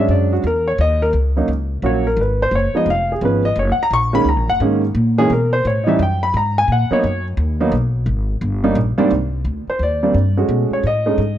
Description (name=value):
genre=jazz piano trio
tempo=173 BPM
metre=4/4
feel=swing 64% on 8ths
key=G# minor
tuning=A4 = 435 Hz
part: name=warm concert grand piano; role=melody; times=0.0-11.4 s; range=G#2 to C#6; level=-17 LUFS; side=right 1 dB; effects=none
part: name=upright bass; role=bass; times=0.0-11.4 s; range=E#1 to B2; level=-18 LUFS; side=equal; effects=none
room=studio reverb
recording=dry, close 1970s-style studio recording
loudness=-15 LUFS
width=side -11 dB against mid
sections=0.0-9.1 A section; 9.1-11.4 A section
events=grand piano solo 0.0-9.1, 9.1-11.4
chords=0.0 A#7alt; 0.8 D#m7; 2.2 G#m7; 2.9 C#7; 3.6 F#69; 5.0 A#7(no3); 5.6 A7; 6.3 G#m9; 8.4 D# (rootless); 9.1 G#maj7#11 (rootless); 10.5 B13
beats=0.10 0.44 | 0.79 1.14 1.48 1.83 | 2.18 2.52 2.87 3.22 | 3.56 3.91 4.26 4.60 | 4.95 5.30 5.64 5.99 | 6.34 6.68 7.03 7.38 | 7.72 8.07 8.42 8.77 | 9.11 9.46 9.81 10.15 | 10.50 10.85 11.20